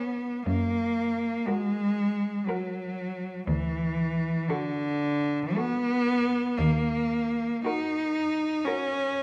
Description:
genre	classical, lyrical piece for cello ensemble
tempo	60 BPM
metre	3/4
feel	rubato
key	unclear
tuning	A4 = 438 Hz
part	rich cello	melody	0.0-9.2 s	A4 to Cb5	-39 LUFS	equal	none
part	warm cello	second line	0.0-9.2 s	F4 to F#4	-40 LUFS	equal	none
part	rich cello	accompaniment	0.0-9.2 s	D3 to Eb4	-29 LUFS	equal	none
part	rich cello	bass	0.5-7.5 s	D2 to F#2	-32 LUFS	equal	none
room	wet recital hall reverb, RT60 1.3 s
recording	none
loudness	-28 LUFS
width	mono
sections	0.0-9.2 A section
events	none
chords	0.5 F#; 3.5 D; 6.6 Ebm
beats	| 0.46 1.47 2.48 | 3.47 4.48 5.57 | 6.58 7.65 8.65

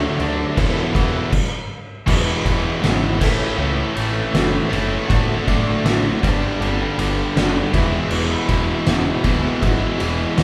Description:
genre	quiet-loud alternative rock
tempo	80 BPM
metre	4/4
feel	straight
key	E mixolydian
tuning	A4 = 440 Hz
part	mellow tonewheel organ	sustained chords	0.0-10.4 s	F#4 to D6	-36 LUFS	equal	none
part	cranked stack guitar	riff	0.0-10.4 s	E2 to D4	-26 LUFS	equal	overdrive
part	distorted electric guitar	riff	0.0-10.4 s	G2 to A4	-26 LUFS	equal	overdrive
part	growling picked electric bass	bass	0.0-10.4 s	E1 to D2	-27 LUFS	equal	overdrive
part	oversized low-tuned drum kit	drums	0.2-10.4 s	crash cymbal, kick drum, ride cymbal, snare drum	-23 LUFS	equal	none
room	light reverb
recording	band playing live in one room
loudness	-19 LUFS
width	mono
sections	0.0-2.1 A section; 2.1-10.4 B section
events	stop 1.3-2.1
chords	0.0 Dadd9; 0.6 Esus4; 2.1 E6; 3.2 A; 5.1 Dadd9/A; 6.2 Gadd9; 7.7 E6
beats	0.57 1.32 | 2.08 2.83 3.59 4.34 | 5.09 5.85 6.60 7.36 | 8.11 8.87 9.62 10.38

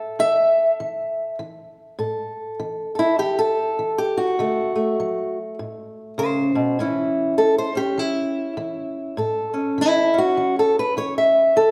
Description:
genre	acoustic country blues, solo or duo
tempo	100 BPM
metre	4/4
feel	swing 60% on 8ths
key	A mixolydian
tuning	A4 = 440 Hz
part	fingerpicked old ladder-braced acoustic guitar	solo	0.0-11.7 s	A2 to E5	-21 LUFS	equal	none
room	wet recital hall reverb, RT60 1.4 s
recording	recorded in a church or concert hall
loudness	-21 LUFS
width	mono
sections	0.0-2.0 A section; 2.0-11.7 B section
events	steel-string acoustic guitar solo 2.0-11.7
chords	0.0 A5; 4.4 D; 6.8 A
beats	0.19 0.79 1.39 | 1.99 2.59 3.18 3.78 | 4.38 4.98 5.58 6.17 | 6.77 7.37 7.97 8.57 | 9.17 9.77 10.36 10.96 | 11.56

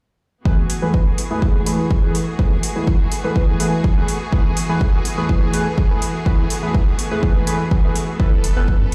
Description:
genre	progressive house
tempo	124 BPM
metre	4/4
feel	straight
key	F# minor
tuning	A4 = 441 Hz
part	rich symphonic string section	sustained chords	0.5-8.9 s	E3 to B4	-30 LUFS	equal	sidechain pumping, low-pass filter
part	chorused polysynth	stabs	0.5-8.7 s	E3 to B4	-24 LUFS	equal	sidechain pumping, delay
part	electronic kick drum	drums	0.5-8.8 s	none	-19 LUFS	equal	overdrive
part	electronic hi-hat	drums	0.7-8.9 s	none	-30 LUFS	equal	overdrive
part	round analog bass	bass	8.3-8.9 s	F#1 to F#2	-20 LUFS	equal	sidechain pumping
room	digital ambience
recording	played on a big sound system in a bare room, large studio reverb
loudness	-18 LUFS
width	mono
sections	0.5-8.9 A section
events	none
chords	0.5 F#m11; 8.2 Asus2/F#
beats	| 0.46 0.94 1.42 1.91 | 2.39 2.88 3.36 3.84 | 4.33 4.81 5.29 5.78 | 6.26 6.75 7.23 7.71 | 8.20 8.68

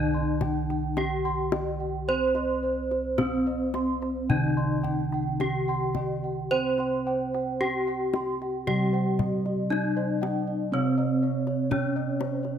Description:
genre	Javanese gamelan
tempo	54-63 BPM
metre	4/4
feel	straight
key	unclear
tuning	A4 = 437 Hz
part	gamelan-type bronze metallophone	melody	0.0-12.6 s	C4 to C5	-28 LUFS	left 1 dB	none
part	gamelan-type bronze metallophone	accompaniment	0.0-12.6 s	C3 to C4	-31 LUFS	right 5 dB	none
part	gamelan-type bossed gongs	arpeggios	0.0-12.5 s	C5 to C6	-37 LUFS	left 4 dB	none
part	gamelan-type bronze metallophone	arpeggios	0.0-12.6 s	C5 to C6	-35 LUFS	right 5 dB	none
part	gamelan-type bossed gongs	bass	0.0-12.6 s	C2 to C5	-33 LUFS	left 1 dB	none
part	kendang	percussion	0.4-12.6 s	none	-33 LUFS	left 5 dB	none
room	moderate recital hall reverb, RT60 1.5 s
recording	close, detailed microphones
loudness	-24 LUFS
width	side -8 dB against mid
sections	0.0-12.6 A section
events	none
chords	none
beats	0.97 | 2.08 3.19 4.30 5.41 | 6.52 7.61 8.68 9.71 | 10.73 11.71

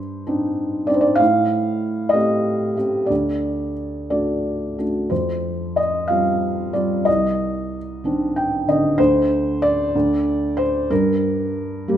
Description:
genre	classical, lyrical solo piano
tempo	62 BPM (dotted quarters)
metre	6/8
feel	rubato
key	unclear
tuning	A4 = 436 Hz
part	felt-muted upright piano	solo	0.0-12.0 s	C2 to G5	-18 LUFS	equal	none
room	moderate recital hall reverb, RT60 1.5 s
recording	minimal, uncompressed stereo recording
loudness	-18 LUFS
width	side -10 dB against mid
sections	0.0-12.0 A section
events	felt piano fill 8.0-9.0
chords	0.0 Cmadd9/G; 1.2 Am7b5; 3.1 D; 5.1 Fsus2; 7.1 Cmadd9; 9.0 N.C.; 10.9 Gm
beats	0.27 | 1.21 2.15 | 3.10 4.11 | 5.11 6.09 | 7.07 8.04 | 8.99 9.95 | 10.90 11.88

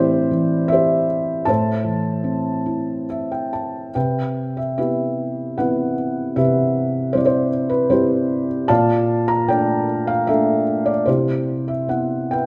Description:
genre	classical, lyrical solo piano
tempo	75 BPM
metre	3/4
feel	uneven beats, rubato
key	A minor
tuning	A4 = 440 Hz
part	felt-muted upright piano	solo	0.0-12.5 s	A2 to Bb5	-20 LUFS	equal	none
room	wet recital hall reverb, RT60 1.4 s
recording	recorded in a church or concert hall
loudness	-20 LUFS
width	mono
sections	0.0-4.0 A section; 4.0-12.5 B section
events	felt piano fill 2.7-4.0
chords	0.0 Am7; 1.5 Am; 4.0 Cmaj7; 8.7 Bbmaj7; 11.1 Cmaj7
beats	0.72 | 1.49 2.26 3.10 | 3.95 4.78 5.58 | 6.37 7.14 7.91 | 8.70 9.49 10.28 | 11.07 11.90

